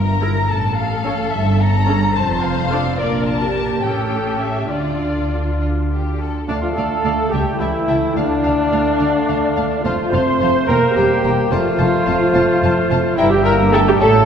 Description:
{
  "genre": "quick classical-period movement for symphony orchestra",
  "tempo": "72 BPM (dotted quarters)",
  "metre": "6/8",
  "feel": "straight",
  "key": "D minor",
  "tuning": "A4 = 440 Hz",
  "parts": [
    { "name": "muted studio violin section", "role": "melody", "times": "0.0-14.1 s", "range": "D5 to Bb5", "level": "-26 LUFS", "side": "left 3 dB", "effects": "none" },
    { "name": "muted studio violin section", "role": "second line", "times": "0.0-14.1 s", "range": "F4 to A5", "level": "-27 LUFS", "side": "left 3 dB", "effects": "none" },
    { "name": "muted studio cello section", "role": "bass", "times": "0.0-14.3 s", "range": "C#2 to D3", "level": "-22 LUFS", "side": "right 1 dB", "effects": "none" },
    { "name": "muted studio double bass section", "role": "bass", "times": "0.0-14.3 s", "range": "E1 to D2", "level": "-22 LUFS", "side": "right 1 dB", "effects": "none" },
    { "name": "muted studio viola section", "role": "accompaniment", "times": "0.2-14.3 s", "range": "C#4 to C5", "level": "-20 LUFS", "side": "equal", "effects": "none" },
    { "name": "mellow hollow silver concert flute", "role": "second line", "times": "6.5-14.3 s", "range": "D5 to C6", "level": "-24 LUFS", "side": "left 1 dB", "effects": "none" },
    { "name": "warm clarinet", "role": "second line", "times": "6.5-14.3 s", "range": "C5 to G5", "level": "-26 LUFS", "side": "right 1 dB", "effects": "none" },
    { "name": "warm cor anglais", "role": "second line", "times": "6.5-14.3 s", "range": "D4 to C5", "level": "-23 LUFS", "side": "equal", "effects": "none" },
    { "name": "mellow bassoon", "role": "accompaniment", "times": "6.5-14.3 s", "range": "G3 to Bb3", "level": "-24 LUFS", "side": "right 2 dB", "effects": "none" },
    { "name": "mellow French horn section", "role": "sustained chords", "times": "6.5-14.3 s", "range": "D3 to C4", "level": "-23 LUFS", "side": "left 3 dB", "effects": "none" }
  ],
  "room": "wet concert hall reverb, RT60 2.1 s",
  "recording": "heard from further back in the room",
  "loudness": "-15 LUFS",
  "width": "side -7 dB against mid",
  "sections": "0.0-6.5 A section; 6.5-14.3 A section",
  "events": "none",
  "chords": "0.5 A; 1.3 A7/G; 2.1 Dm/F; 3.0 Bb; 3.8 A7; 4.7 Dm; 7.3 A7/C#; 8.2 Dm; 9.8 F; 10.7 C7/E; 11.5 F; 13.2 Edim/G"
}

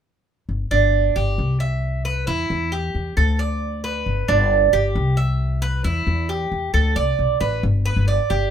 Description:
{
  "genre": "latin, Cuban son and guajira",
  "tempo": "134 BPM",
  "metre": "4/4",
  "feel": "straight",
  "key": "G major",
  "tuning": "A4 = 440 Hz",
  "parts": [
    { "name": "upright bass", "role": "bass", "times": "0.5-8.5 s", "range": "G1 to E2", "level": "-20 LUFS", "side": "left 1 dB", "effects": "none" },
    { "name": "Cuban tres", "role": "arpeggios", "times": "0.7-8.5 s", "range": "D4 to E5", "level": "-21 LUFS", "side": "right 5 dB", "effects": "none" }
  ],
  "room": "moderate studio reverb, RT60 0.7 s",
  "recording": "minimal, uncompressed stereo recording",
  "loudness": "-18 LUFS",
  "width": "side -8 dB against mid",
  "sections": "0.5-7.6 A section",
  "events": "none",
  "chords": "0.5 G5; 1.4 C; 2.3 Em; 3.2 D5; 4.1 G; 5.0 C; 5.8 Em; 6.7 D5; 7.6 G"
}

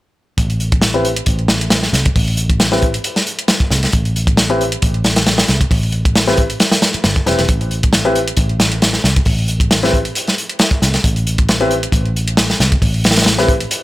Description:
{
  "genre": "breakbeat, breaks",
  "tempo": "135 BPM",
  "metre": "4/4",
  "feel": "swing 54% on 16ths",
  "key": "A minor",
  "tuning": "A4 = 443 Hz",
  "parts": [
    { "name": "picked electric bass", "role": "bass", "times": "0.4-13.6 s", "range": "E1 to C2", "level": "-18 LUFS", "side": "equal", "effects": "low-pass filter" },
    { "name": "crunchy breakbeat drum kit", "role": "drums", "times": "0.4-13.8 s", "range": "hi-hat, kick drum, snare drum", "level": "-14 LUFS", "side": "equal", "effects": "none" },
    { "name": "electronic hi-hat", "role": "drums", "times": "0.4-13.8 s", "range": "none", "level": "-26 LUFS", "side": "right 1 dB", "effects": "none" },
    { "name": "clear concert grand piano", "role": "stabs", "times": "0.9-13.5 s", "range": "C4 to B4", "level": "-18 LUFS", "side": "left 1 dB", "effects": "low-pass filter, dub echo" }
  ],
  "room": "small room ambience",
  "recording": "none",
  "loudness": "-12 LUFS",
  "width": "side -17 dB against mid",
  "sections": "0.4-13.8 A section",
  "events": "filter sweep on grand piano 0.4-13.8",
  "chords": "0.4 Am"
}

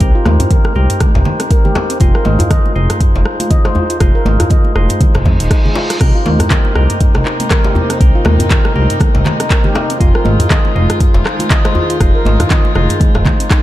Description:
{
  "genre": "afro house",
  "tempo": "120 BPM",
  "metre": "4/4",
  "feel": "swing 58% on 16ths",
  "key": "unclear",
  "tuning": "A4 = 440 Hz",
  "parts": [
    { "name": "handpan", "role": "arpeggios", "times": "0.0-13.6 s", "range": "C4 to Eb5", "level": "-21 LUFS", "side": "equal", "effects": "sidechain pumping, tape echo" },
    { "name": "percussive tonewheel organ", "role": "stabs", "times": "0.0-13.6 s", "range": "Eb4 to C5", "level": "-21 LUFS", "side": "left 1 dB", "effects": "overdrive, stopped rotary speaker, vintage 12-bit sampler grit, sidechain pumping, tape echo" },
    { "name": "smooth gliding synth bass", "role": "bass", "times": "0.0-13.2 s", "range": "Eb1 to F2", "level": "-13 LUFS", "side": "equal", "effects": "sidechain pumping" },
    { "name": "afro-pop drum kit", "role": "drums", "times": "0.0-13.6 s", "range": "crash cymbal, handclaps, hi-hat, rim click, toms", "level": "-19 LUFS", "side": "equal", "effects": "none" },
    { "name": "electronic kick drum", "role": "drums", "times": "0.0-13.6 s", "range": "none", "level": "-12 LUFS", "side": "equal", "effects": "none" },
    { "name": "congas", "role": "percussion", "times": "0.0-13.6 s", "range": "none", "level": "-21 LUFS", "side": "right 1 dB", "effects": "none" },
    { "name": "djembe", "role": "percussion", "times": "0.3-13.4 s", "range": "none", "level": "-21 LUFS", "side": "left 1 dB", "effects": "none" },
    { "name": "reverse cymbal", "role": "sound effects", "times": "5.2-6.0 s", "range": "none", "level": "-26 LUFS", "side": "right 2 dB", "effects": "none" },
    { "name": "warm chamber string section", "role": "sustained chords", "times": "6.0-13.6 s", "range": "C3 to F4", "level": "-22 LUFS", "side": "left 1 dB", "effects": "sidechain pumping" }
  ],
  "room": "light reverb, small room reverb",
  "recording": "dark, warm production",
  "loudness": "-10 LUFS",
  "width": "side -14 dB against mid",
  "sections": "0.0-13.6 A section",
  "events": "reverse cymbal 5.2-6.0",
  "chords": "0.0 Cm7; 2.0 Fm7; 6.0 Cm7; 10.0 Fm7"
}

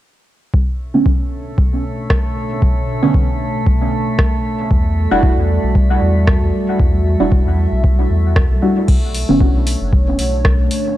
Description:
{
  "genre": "dub techno",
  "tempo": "115 BPM",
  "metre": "4/4",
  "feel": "swing 54% on 16ths",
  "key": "B minor",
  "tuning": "A4 = 439 Hz",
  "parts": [
    { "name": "dark analog pad", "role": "sustained chords", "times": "1.4-11.0 s", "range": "B2 to E5", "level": "-23 LUFS", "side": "equal", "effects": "chorus, sidechain pumping" },
    { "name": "electronic kick drum", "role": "drums", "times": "0.5-10.6 s", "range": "none", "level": "-15 LUFS", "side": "equal", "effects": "none" },
    { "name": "drifting glass-harmonics texture", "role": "texture", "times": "1.4-8.9 s", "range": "A3 to A4", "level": "-25 LUFS", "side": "right 2 dB", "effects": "chorus, built-in reverb, sidechain pumping" },
    { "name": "deep mellow chord stab", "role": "stabs", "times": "0.9-9.4 s", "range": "D3 to F#4", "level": "-18 LUFS", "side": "right 1 dB", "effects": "chorus, phaser, dub echo" },
    { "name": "booming analog drum machine", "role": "drums", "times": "2.1-10.8 s", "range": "crash cymbal, hi-hat, rim click", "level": "-23 LUFS", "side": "equal", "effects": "none" },
    { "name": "soft dub sub bass", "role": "bass", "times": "4.7-10.7 s", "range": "E1 to E2", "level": "-17 LUFS", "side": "equal", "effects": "sidechain pumping" }
  ],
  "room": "little or no reverb",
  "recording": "dry, gritty hardware recording, cassette tape",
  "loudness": "-13 LUFS",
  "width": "side -14 dB against mid",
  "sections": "0.5-8.9 A section; 8.9-11.0 B section",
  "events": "none",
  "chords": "0.5 Bm9; 4.7 Em9; 8.9 Bm9"
}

